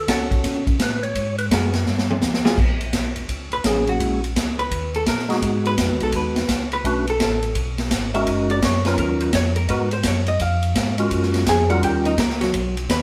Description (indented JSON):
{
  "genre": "soul jazz organ trio",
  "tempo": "169 BPM",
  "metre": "4/4",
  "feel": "swing 64% on 8ths",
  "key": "F# major",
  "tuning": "A4 = 440 Hz",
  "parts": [
    { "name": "percussive tonewheel organ", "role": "melody", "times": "0.0-1.5, 3.6-12.2 s", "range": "F#3 to C#5", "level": "-25 LUFS", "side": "equal", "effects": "fast rotary speaker" },
    { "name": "mellow tonewheel organ", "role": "bass", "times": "0.0-13.0 s", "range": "F#1 to C#3", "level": "-27 LUFS", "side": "equal", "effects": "chorus vibrato, slow rotary speaker" },
    { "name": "vintage hollow-body jazz guitar", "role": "accompaniment", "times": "0.1-13.0 s", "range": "F#3 to G#5", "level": "-26 LUFS", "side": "equal", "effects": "none" },
    { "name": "swinging big-band drum kit", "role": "drums", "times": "0.1-13.0 s", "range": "crash cymbal, hi-hat, kick drum, ride cymbal, snare drum, toms", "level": "-25 LUFS", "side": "equal", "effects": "none" }
  ],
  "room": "moderate stone room reverb, RT60 0.9 s",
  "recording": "band playing live in one room",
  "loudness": "-21 LUFS",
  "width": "mono",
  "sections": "0.0-2.6 A section; 2.6-13.0 A section",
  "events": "tonewheel organ solo 0.0-2.6; drum fill 1.9-2.6; hollow-body jazz guitar solo 2.6-13.0",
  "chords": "0.0 Dmaj7 (rootless); 1.2 G#m9; 1.9 G5; 2.6 F#add9; 4.0 A#m7b5; 4.7 D#5; 5.4 G#m7; 6.8 Bm7; 7.6 G#m; 8.3 F#6; 9.0 D#m9; 9.7 G#m9; 10.4 C# (rootless); 11.1 F#maj9; 11.8 D#7",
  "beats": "0.08 0.44 0.80 | 1.16 1.51 1.87 2.23 | 2.58 2.94 3.29 3.65 | 4.01 4.36 4.72 5.07 | 5.43 5.78 6.14 6.49 | 6.85 7.20 7.56 7.91 | 8.27 8.62 8.98 9.33 | 9.69 10.04 10.40 10.75 | 11.11 11.46 11.82 12.18 | 12.53 12.89"
}